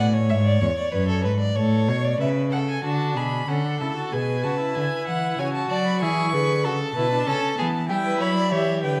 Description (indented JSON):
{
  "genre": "classical, baroque-style fugue for string quartet",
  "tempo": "95 BPM",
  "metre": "4/4",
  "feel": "straight",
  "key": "A major",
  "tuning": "A4 = 441 Hz",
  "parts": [
    { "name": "rich violin", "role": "melody", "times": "0.0-9.0 s", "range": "A4 to C#6", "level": "-30 LUFS", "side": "equal", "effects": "none" },
    { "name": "rich violin", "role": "second line", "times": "0.0-9.0 s", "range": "F#4 to D5", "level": "-29 LUFS", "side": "equal", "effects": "none" },
    { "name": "warm cello", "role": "bass", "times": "0.0-9.0 s", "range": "E2 to G3", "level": "-26 LUFS", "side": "equal", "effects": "none" },
    { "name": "rich viola", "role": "accompaniment", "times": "2.8-9.0 s", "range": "B3 to G#4", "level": "-31 LUFS", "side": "equal", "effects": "none" }
  ],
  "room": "wet recital hall reverb, RT60 1.5 s",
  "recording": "none",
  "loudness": "-23 LUFS",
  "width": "mono",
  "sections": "0.0-2.8 A section; 2.8-9.0 B section",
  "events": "none",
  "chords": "0.3 E (rootless); 1.6 A; 2.8 Bm; 5.4 C#m; 6.6 A; 7.9 Em7"
}